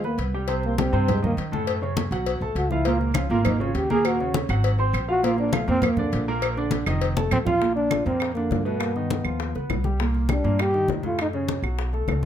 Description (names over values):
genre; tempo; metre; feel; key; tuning
Afro-Cuban jazz; 202 BPM; 4/4; straight; unclear; A4 = 437 Hz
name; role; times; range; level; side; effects
breathy trombone; melody; 0.0-11.6 s; Ab3 to Ab4; -25 LUFS; equal; plate reverb
clear grand piano; accompaniment; 0.0-12.3 s; A2 to C6; -27 LUFS; right 2 dB; none
upright bass; bass; 0.0-12.3 s; F1 to G2; -26 LUFS; equal; none
congas; percussion; 0.0-12.3 s; none; -28 LUFS; left 1 dB; none
cowbell and bongos; percussion; 0.2-12.2 s; none; -32 LUFS; left 8 dB; none
claves; percussion; 3.1-12.2 s; none; -33 LUFS; right 7 dB; none
room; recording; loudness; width
light reverb; close, detailed microphones; -21 LUFS; side -10 dB against mid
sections
0.0-7.6 A section; 7.6-12.3 B section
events
trombone solo 0.0-7.6; drum fill 7.2-7.6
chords
0.5 Cm; 1.7 Gbm; 2.3 Bsus2; 2.9 Db69; 4.0 Ebm7; 4.6 Ab9; 5.2 Bb; 7.0 F7; 7.6 Bbadd9; 8.8 Gaug7; 10.0 Cm9; 11.2 Gbm